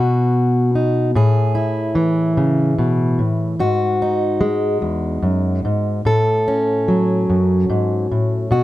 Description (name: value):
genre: folk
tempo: 49 BPM (dotted quarters)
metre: 6/8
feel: straight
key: unclear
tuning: A4 = 439 Hz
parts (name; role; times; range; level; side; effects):
- fingerpicked plugged-in steel-string acoustic guitar; solo; 0.0-8.6 s; E2 to A4; -15 LUFS; equal; none
room: light reverb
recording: close, detailed microphones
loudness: -15 LUFS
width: side -15 dB against mid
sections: 0.0-1.1 A section; 1.1-8.6 B section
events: none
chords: 0.0 B; 1.1 Amaj7; 3.6 G#5; 6.1 F#m/A